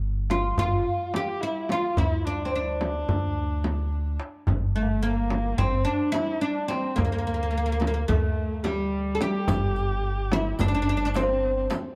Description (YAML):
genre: Turkish makam ensemble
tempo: 216 BPM (eighths)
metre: 9/8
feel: straight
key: G makam huseyni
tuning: A4 = 441 Hz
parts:
  - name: upright bass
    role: bass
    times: 0.0-11.7 s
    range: G1 to D2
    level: -30 LUFS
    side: equal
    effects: none
  - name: oud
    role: melody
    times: 0.3-11.7 s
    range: G3 to A4-30c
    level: -30 LUFS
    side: equal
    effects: none
  - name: dark kamancheh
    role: second line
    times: 0.3-11.7 s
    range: G3 to G4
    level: -35 LUFS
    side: equal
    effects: analog delay
  - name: darbuka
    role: percussion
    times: 0.3-11.9 s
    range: none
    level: -32 LUFS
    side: equal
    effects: none
  - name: frame drum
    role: percussion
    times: 0.3-11.8 s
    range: none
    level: -34 LUFS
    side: equal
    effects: none
  - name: riq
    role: percussion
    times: 9.5-11.8 s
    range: none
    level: -41 LUFS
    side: equal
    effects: none
room: light reverb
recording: dark, warm production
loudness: -26 LUFS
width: mono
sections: 0.0-9.5 A section; 9.5-12.0 B section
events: none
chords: none